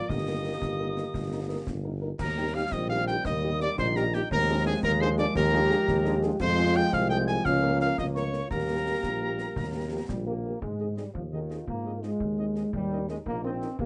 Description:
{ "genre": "military-style march for wind band", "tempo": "114 BPM (dotted quarters)", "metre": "6/8", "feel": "straight", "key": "Eb major, Ab major from 6.4 s", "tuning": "A4 = 440 Hz", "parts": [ { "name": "clear cornet", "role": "melody", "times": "0.0-13.7 s", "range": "G4 to Ab5", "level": "-36 LUFS", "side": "equal", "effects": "none" }, { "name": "bright piccolo", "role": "second line", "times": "0.0-10.1 s", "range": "G5 to Ab6", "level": "-34 LUFS", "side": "equal", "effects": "none" }, { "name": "warm euphonium", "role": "second line", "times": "0.0-13.9 s", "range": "Bb3 to G4", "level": "-37 LUFS", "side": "equal", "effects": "none" }, { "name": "warm trombone section", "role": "sustained chords", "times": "0.0-13.9 s", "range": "Eb3 to C4", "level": "-36 LUFS", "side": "equal", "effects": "none" }, { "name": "warm tuba", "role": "bass", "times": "0.1-13.9 s", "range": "G1 to Ab2", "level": "-33 LUFS", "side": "equal", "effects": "none" }, { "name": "concert snare drum, concert bass drum and clash cymbals", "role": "drums", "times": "0.1-13.9 s", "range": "none", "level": "-40 LUFS", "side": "equal", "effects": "none" }, { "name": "mellow French horn section", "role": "accompaniment", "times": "0.3-13.7 s", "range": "Bb3 to Bb4", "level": "-38 LUFS", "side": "equal", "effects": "none" } ], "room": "moderate studio reverb, RT60 0.5 s", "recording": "dark, warm production, nothing above 10.5 kHz", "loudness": "-28 LUFS", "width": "mono", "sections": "0.0-2.2 A section; 2.2-10.6 A section; 10.6-13.9 B section", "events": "none", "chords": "0.1 Eb/G; 2.2 Eb; 4.3 Bb7/Eb; 6.4 Fm; 7.5 Bbm/Db; 8.5 Eb; 10.6 Ab; 12.7 Eb7", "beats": "| 0.10 0.62 | 1.15 1.67 | 2.20 2.73 | 3.25 3.78 | 4.30 4.83 | 5.36 5.88 | 6.41 6.93 | 7.46 7.99 | 8.51 9.04 | 9.57 10.10 | 10.62 11.15 | 11.68 12.21 | 12.74 13.27 | 13.80" }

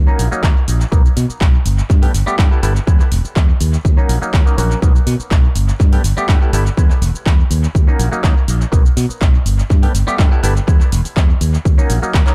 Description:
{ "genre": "filtered disco house", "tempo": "123 BPM", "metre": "4/4", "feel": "straight", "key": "unclear", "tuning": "A4 = 441 Hz", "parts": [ { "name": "modern bright fingered electric bass", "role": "bass", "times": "0.0-12.2 s", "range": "E1 to B2", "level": "-19 LUFS", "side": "equal", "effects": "sidechain pumping, low-pass filter" }, { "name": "clav", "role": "accompaniment", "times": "0.1-12.3 s", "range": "F#3 to G4", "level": "-25 LUFS", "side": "equal", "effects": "phaser, sidechain pumping, low-pass filter, dub echo" }, { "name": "house drum kit", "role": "drums", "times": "0.2-12.3 s", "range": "handclaps, hi-hat, shaker", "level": "-28 LUFS", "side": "equal", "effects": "overdrive, sidechain pumping on perc, sidechain pumping on hats, dub echo" }, { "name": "electronic kick drum", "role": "drums", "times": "0.4-12.2 s", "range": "none", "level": "-15 LUFS", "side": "equal", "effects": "overdrive" } ], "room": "little or no reverb", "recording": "echo-heavy mix", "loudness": "-14 LUFS", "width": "mono", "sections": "0.0-12.3 A section", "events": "none", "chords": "0.0 D#m7; 0.9 Bmaj7; 1.7 G69; 2.9 E6; 3.6 D#m7; 4.8 Bmaj7; 5.6 G69; 6.8 E6; 7.5 D#m7; 8.7 Bmaj7; 9.5 G69; 10.7 E6; 11.4 D#m7", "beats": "0.43 | 0.92 1.41 1.90 2.39 | 2.87 3.36 3.85 4.34 | 4.83 5.31 5.80 6.29 | 6.78 7.26 7.75 8.24 | 8.73 9.21 9.70 10.19 | 10.68 11.17 11.65 12.14" }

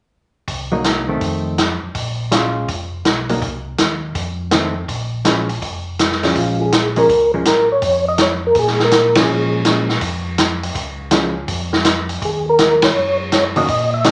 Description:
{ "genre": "soul jazz organ trio", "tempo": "164 BPM", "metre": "4/4", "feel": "swing 66% on 8ths", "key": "Bb minor from 6.4 s", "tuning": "A4 = 440 Hz", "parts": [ { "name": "mellow tonewheel organ", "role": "bass", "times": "0.5-14.1 s", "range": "E#1 to Bb2", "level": "-27 LUFS", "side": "equal", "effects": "overdrive, chorus vibrato, slow rotary speaker" }, { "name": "vintage drum kit", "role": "drums", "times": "0.5-14.1 s", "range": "hi-hat, kick drum, ride cymbal, snare drum", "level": "-20 LUFS", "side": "equal", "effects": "none" }, { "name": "hollow-body jazz guitar", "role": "accompaniment", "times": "0.7-11.3, 13.6-14.1 s", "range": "Eb3 to Gb4", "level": "-23 LUFS", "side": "equal", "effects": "none" }, { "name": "percussive tonewheel organ", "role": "melody", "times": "6.4-9.6, 12.3-14.1 s", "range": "F4 to E5", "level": "-17 LUFS", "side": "equal", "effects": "slow rotary speaker, chorus vibrato" } ], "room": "moderate large studio reverb, RT60 0.8 s", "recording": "nothing above 10.4 kHz", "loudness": "-17 LUFS", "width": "mono", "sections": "0.5-6.4 A section; 6.4-14.1 B section", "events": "band accent 9.1, 12.8", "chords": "0.5 Cm7b5; 1.2 F7; 2.0 Bbm7; 2.7 Bmaj7#11/E#; 3.4 Cm; 4.2 F7; 4.9 Bbm7; 5.6 Fm; 6.4 Bbm7; 12.2 Ebm7", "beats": "| 0.48 0.85 1.22 1.58 | 1.95 2.32 2.69 3.05 | 3.42 3.79 4.16 4.52 | 4.89 5.26 5.62 5.99 | 6.36 6.72 7.09 7.46 | 7.82 8.19 8.56 8.92 | 9.29 9.66 10.02 10.39 | 10.76 11.12 11.49 11.85 | 12.22 12.58 12.95 13.32 | 13.68 14.05" }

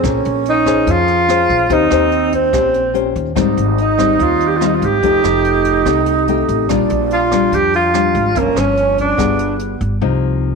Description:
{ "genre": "bossa nova", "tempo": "144 BPM", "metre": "4/4", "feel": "straight", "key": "unclear", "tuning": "A4 = 440 Hz", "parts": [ { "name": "bright reedy wooden-headed alto flute", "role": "second line", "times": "0.0-9.8 s", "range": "B3 to Eb4", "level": "-19 LUFS", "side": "right 11 dB", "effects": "none" }, { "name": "nylon-string guitar", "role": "accompaniment", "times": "0.0-10.6 s", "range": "G2 to C5", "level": "-18 LUFS", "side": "left 14 dB", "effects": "none" }, { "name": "upright bass", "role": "bass", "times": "0.0-10.6 s", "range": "F1 to F2", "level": "-21 LUFS", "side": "right 1 dB", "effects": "none" }, { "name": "jazz brush drum kit", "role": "drums", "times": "0.0-9.9 s", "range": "hi-hat, kick drum, rim click", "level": "-26 LUFS", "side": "right 4 dB", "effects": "none" }, { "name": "breathy tenor saxophone", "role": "melody", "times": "0.5-9.6 s", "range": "Bb3 to G4", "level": "-15 LUFS", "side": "right 1 dB", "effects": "none" } ], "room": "moderate spring reverb, RT60 1.6 s, studio reverb", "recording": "1960s-style stereo with parts hard left and right", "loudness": "-12 LUFS", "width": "side -4 dB against mid", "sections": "0.0-10.0 A section", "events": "none", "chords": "0.0 Bbm9; 1.7 Eb6; 3.4 Abmaj7; 5.0 F9; 6.7 Bb6; 8.4 Gm7b5; 9.2 G7b9; 10.0 Cm7", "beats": "| 0.03 0.45 0.86 1.28 | 1.70 2.11 2.53 2.95 | 3.36 3.78 4.20 4.61 | 5.03 5.44 5.86 6.28 | 6.69 7.11 7.52 7.94 | 8.36 8.77 9.19 9.60 | 10.02 10.44" }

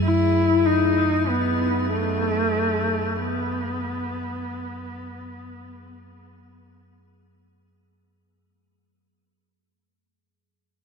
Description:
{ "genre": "ambient", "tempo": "free time", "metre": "none", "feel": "none", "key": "F# dorian", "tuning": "A4 = 441 Hz", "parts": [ { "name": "clear horsehead fiddle", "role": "melody", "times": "0.0-7.0 s", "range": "A3 to E4", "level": "-22 LUFS", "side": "left 1 dB", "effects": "ping-pong delay" }, { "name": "deep rumbling drone", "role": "drone", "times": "0.0-8.4 s", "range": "F#2 to F#3", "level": "-28 LUFS", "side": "right 1 dB", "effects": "built-in reverb, phaser, wide subtle chorus" }, { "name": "icy glass pad", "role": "texture", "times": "0.0-8.4 s", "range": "A3 to G#4", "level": "-34 LUFS", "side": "equal", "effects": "chorus, built-in reverb" } ], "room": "wet huge ambient reverb, RT60 7.2 s", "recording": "dark, warm production", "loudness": "-20 LUFS", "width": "side -5 dB against mid", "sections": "0.0-8.3 A section", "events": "fade-out 0.0-8.3; filter sweep on synth drone 0.0-8.3", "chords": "0.0 F#m", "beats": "free time" }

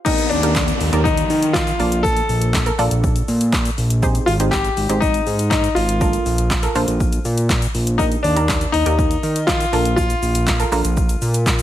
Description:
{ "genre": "dance-pop", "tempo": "121 BPM", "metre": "4/4", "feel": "straight", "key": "Bb major", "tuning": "A4 = 439 Hz", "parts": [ { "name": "clear concert grand piano", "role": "melody", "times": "0.0-11.6 s", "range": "D4 to A4", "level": "-21 LUFS", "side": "left 2 dB", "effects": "ping-pong delay" }, { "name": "analog pluck", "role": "accompaniment", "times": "0.1-11.2 s", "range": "Bb3 to D5", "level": "-24 LUFS", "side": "right 3 dB", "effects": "chorus, sidechain pumping" }, { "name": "punchy analog drum machine", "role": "drums", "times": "0.1-11.6 s", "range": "crash cymbal, handclaps, hi-hat, kick drum, shaker, snare drum", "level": "-21 LUFS", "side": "equal", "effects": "none" }, { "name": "egg shaker", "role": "percussion", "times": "0.1-11.6 s", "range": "none", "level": "-35 LUFS", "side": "left 12 dB", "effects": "none" }, { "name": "downlifter", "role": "sound effects", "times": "0.1-4.0 s", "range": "none", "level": "-27 LUFS", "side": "left 2 dB", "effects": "none" }, { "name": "fat analog bass", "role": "bass", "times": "0.3-11.6 s", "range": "Ab1 to Eb3", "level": "-19 LUFS", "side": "equal", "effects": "sidechain pumping" } ], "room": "light reverb", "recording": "none", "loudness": "-15 LUFS", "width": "side -12 dB against mid", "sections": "0.1-11.6 A section", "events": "none", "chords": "0.1 Ebmaj7; 1.8 Bbmaj7; 4.0 Abmaj7; 6.0 Bbmaj7; 8.0 Ebmaj7; 9.7 Bbmaj7", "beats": "| 0.06 0.56 1.05 1.55 | 2.04 2.54 3.04 3.53 | 4.03 4.52 5.02 5.51 | 6.01 6.51 7.00 7.50 | 7.99 8.49 8.99 9.48 | 9.98 10.47 10.97 11.46" }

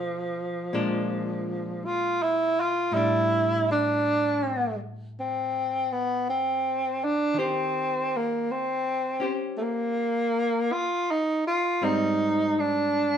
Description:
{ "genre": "jazz", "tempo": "54 BPM", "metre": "4/4", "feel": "swing 68% on 8ths", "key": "unclear", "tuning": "A4 = 440 Hz", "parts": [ { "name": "breathy tenor saxophone", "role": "melody", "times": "0.0-13.2 s", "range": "F3 to F4", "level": "-24 LUFS", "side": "equal", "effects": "none" }, { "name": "archtop guitar, miked and amplified", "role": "accompaniment", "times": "0.0-13.2 s", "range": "Ab2 to C5", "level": "-31 LUFS", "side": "left 1 dB", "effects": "none" } ], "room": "moderate studio reverb, RT60 0.7 s", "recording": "band playing live in one room", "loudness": "-24 LUFS", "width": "side -8 dB against mid", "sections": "0.0-13.2 A section", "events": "none", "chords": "0.0 Bm7b5; 0.7 Bb7; 2.9 A7sus4; 7.4 Eb6; 11.8 Abmaj7#11", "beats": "0.71 1.82 | 2.92 4.03 5.13 6.25 | 7.36 8.46 9.57 10.69 | 11.81 12.92" }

